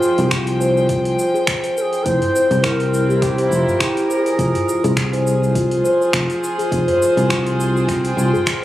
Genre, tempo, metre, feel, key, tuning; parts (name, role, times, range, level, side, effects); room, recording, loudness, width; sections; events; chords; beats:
organic downtempo; 103 BPM; 4/4; swing 56% on 16ths; F harmonic minor; A4 = 440 Hz
bass bansuri; melody; 0.0-5.0 s; F4 to C5; -22 LUFS; left 1 dB; ping-pong delay
warm chamber string section; sustained chords; 0.0-8.6 s; F3 to G5; -24 LUFS; equal; sidechain pumping
steel tongue drum; arpeggios; 0.0-8.6 s; C4 to C5; -19 LUFS; equal; ping-pong delay
deep house drum kit; drums; 0.0-8.6 s; finger snaps, hi-hat, shaker; -24 LUFS; equal; overdrive
sustaining fretless electric bass; bass; 0.2-8.3 s; F1 to C2; -19 LUFS; equal; sidechain pumping
electronic kick drum; drums; 0.3-8.6 s; -25 LUFS; equal
udu; percussion; 2.2-8.4 s; -28 LUFS; equal
moderate lush hall reverb, RT60 1.9 s, studio ambience; recorded on a phone in the room, studio reverb, compression; -15 LUFS; side -14 dB against mid
0.0-8.6 A section
0.0 Fmadd9; 2.1 C7/F; 4.4 Bb5/F; 6.7 Fmadd9
0.31 0.89 1.48 | 2.06 2.64 3.22 3.81 | 4.39 4.97 5.55 6.13 | 6.72 7.30 7.88 8.46